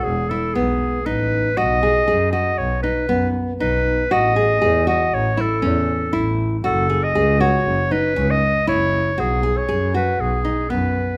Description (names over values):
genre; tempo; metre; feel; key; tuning
contemporary instrumental, chamber music in an uneven meter; 118 BPM; 5/4; straight; B mixolydian; A4 = 439 Hz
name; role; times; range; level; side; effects
bright clarinet; melody; 0.0-11.2 s; G#4 to D#5; -23 LUFS; equal; none
nylon-string guitar; arpeggios; 0.0-11.1 s; B3 to G#4; -24 LUFS; equal; none
clear double bass; bass; 0.1-10.9 s; E1 to F#2; -24 LUFS; equal; none
room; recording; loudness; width
moderate recital hall reverb, RT60 1.3 s; none; -19 LUFS; mono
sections
0.0-11.2 A section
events
none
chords
0.0 Eadd9; 1.6 B6; 4.1 A; 6.6 F#5; 9.2 B5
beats
0.05 0.56 1.07 | 1.57 2.08 2.59 3.10 3.60 | 4.11 4.62 5.12 5.63 6.14 | 6.65 7.15 7.66 8.17 8.68 | 9.19 9.69 10.20 10.71